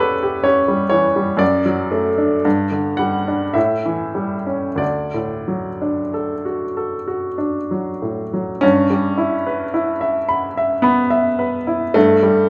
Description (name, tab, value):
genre	classical, romantic nocturne for solo piano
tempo	44-65 BPM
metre	3/4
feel	rubato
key	D major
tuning	A4 = 441 Hz
part	bright upright piano	solo	0.0-12.5 s	D2 to B5	-18 LUFS	equal	none
room	moderate large studio reverb, RT60 1.1 s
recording	heard from further back in the room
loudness	-19 LUFS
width	mono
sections	0.0-8.6 A section; 8.6-12.5 B section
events	none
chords	0.0 A7/E; 1.4 D/F#; 2.4 G5; 3.5 A7; 4.8 D; 8.6 Em/G; 11.9 A7(no3)/G